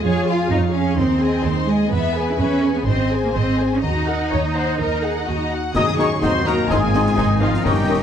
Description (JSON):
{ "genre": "cinematic, heroic adventure film score", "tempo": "126 BPM", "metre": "4/4", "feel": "straight", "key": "Eb dorian", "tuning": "A4 = 440 Hz", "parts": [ { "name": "warm symphonic violin section", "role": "melody", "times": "0.0-8.0 s", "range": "F5 to Eb6", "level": "-28 LUFS", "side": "left 5 dB", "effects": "none" }, { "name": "warm symphonic violin section", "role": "second line", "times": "0.0-8.0 s", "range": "Eb4 to Gb5", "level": "-28 LUFS", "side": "left 5 dB", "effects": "none" }, { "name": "rich symphonic viola section", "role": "accompaniment", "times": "0.0-8.0 s", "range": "Eb3 to Db5", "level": "-26 LUFS", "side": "equal", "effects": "none" }, { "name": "rich symphonic cello section", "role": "bass", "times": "0.0-8.0 s", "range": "Ab3 to Ab4", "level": "-22 LUFS", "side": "right 1 dB", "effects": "none" }, { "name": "rich symphonic double bass section", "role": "bass", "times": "0.0-8.0 s", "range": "G1 to F2", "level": "-22 LUFS", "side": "right 2 dB", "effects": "none" }, { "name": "mellow small flute group", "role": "second line", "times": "5.7-8.0 s", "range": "Bb5 to Db6", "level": "-30 LUFS", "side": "left 2 dB", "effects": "none" }, { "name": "warm cor anglais", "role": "second line", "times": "5.7-8.0 s", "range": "Eb5", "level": "-28 LUFS", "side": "left 2 dB", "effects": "none" }, { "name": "bright trombone section", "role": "sustained chords", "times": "5.7-8.0 s", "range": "Eb3 to Eb4", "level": "-27 LUFS", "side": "right 3 dB", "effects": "none" }, { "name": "concert snare drum, clash cymbals and concert bass drum", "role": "drums", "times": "5.7-8.0 s", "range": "none", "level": "-24 LUFS", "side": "left 1 dB", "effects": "none" }, { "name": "dark clarinet", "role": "second line", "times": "5.8-8.0 s", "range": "Eb4 to Gb4", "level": "-30 LUFS", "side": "left 6 dB", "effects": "none" }, { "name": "mellow French horn section", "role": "sustained chords", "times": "5.8-8.0 s", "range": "F3 to Eb4", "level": "-24 LUFS", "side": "left 4 dB", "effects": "none" }, { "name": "warm trumpet section", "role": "stabs", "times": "5.8-8.0 s", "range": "F4 to Eb5", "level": "-24 LUFS", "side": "left 1 dB", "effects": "none" } ], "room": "moderate scoring stage reverb, RT60 1.7 s", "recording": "dark, warm production", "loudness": "-16 LUFS", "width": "side -8 dB against mid", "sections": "0.0-5.8 A section; 5.8-8.0 A section", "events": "none", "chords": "0.0 Db/F; 1.0 Ab/Eb; 1.9 E; 2.9 Ab; 3.8 Ebm; 6.7 Ab", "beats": "| 0.04 0.51 0.98 1.46 | 1.93 2.40 2.88 3.35 | 3.83 4.32 4.80 5.28 | 5.76 6.24 6.71 7.19 | 7.67" }